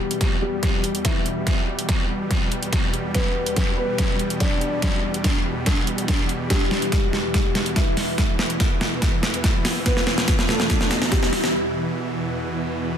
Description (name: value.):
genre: heavy wobble dubstep.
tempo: 143 BPM.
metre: 4/4.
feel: half-time.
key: E minor.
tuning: A4 = 440 Hz.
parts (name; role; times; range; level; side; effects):
dark grand piano; melody; 0.0-11.5 s; E3 to D5; -27 LUFS; left 2 dB; low-pass filter, ping-pong delay.
supersaw chords; sustained chords; 0.0-13.0 s; E2 to G3; -28 LUFS; right 1 dB; sidechain pumping.
dubstep drum kit; drums; 0.1-11.5 s; hi-hat, snare drum; -24 LUFS; equal; overdrive.
electronic kick drum; drums; 0.2-11.2 s; none; -22 LUFS; equal; none.
riser; sound effects; 9.2-11.5 s; none; -35 LUFS; right 2 dB; none.
room: moderate digital room reverb, RT60 0.9 s, digital ambience.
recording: dense, heavily limited modern master.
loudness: -19 LUFS.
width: side -8 dB against mid.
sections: 0.0-13.0 A section.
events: build-up 0.0-13.0; drum fill 0.0-11.5; filter sweep on grand piano 0.0-13.0; break 11.5-13.0.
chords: 0.0 Em.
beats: 0.21 0.63 1.05 | 1.47 1.89 2.31 2.73 | 3.15 3.56 3.98 4.40 | 4.82 5.24 5.66 6.08 | 6.50 6.92 7.34 7.76 | 8.18 8.60 9.02 9.44 | 9.86 10.28 10.70 11.12 | 11.54 11.96 12.38 12.80.